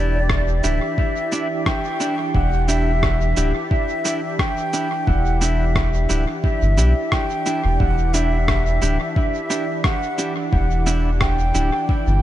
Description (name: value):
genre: ambient dub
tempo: 88 BPM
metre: 4/4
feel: swing 54% on 16ths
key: E minor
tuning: A4 = 438 Hz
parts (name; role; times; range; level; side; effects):
- wooden flute; melody; 0.0-12.2 s; D5 to G5; -24 LUFS; right 1 dB; dub echo
- warm analog pad; sustained chords; 0.0-12.2 s; E3 to D5; -27 LUFS; left 1 dB; chorus
- clean electric guitar; stabs; 0.0-11.7 s; D4 to G4; -28 LUFS; right 2 dB; dub echo
- soft dub sub bass; bass; 0.0-12.2 s; D1 to B1; -19 LUFS; equal; tube saturation
- electronic kick drum; drums; 0.3-12.0 s; none; -21 LUFS; equal; none
- electronic rim click and cabasa; drums; 0.3-11.7 s; none; -27 LUFS; right 1 dB; dub echo
room: light reverb, digital ambience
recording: nothing above 10.8 kHz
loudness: -17 LUFS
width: side -13 dB against mid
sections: 0.0-2.3 A section; 2.3-12.2 B section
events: band accent 1.7-2.0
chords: 0.0 Em7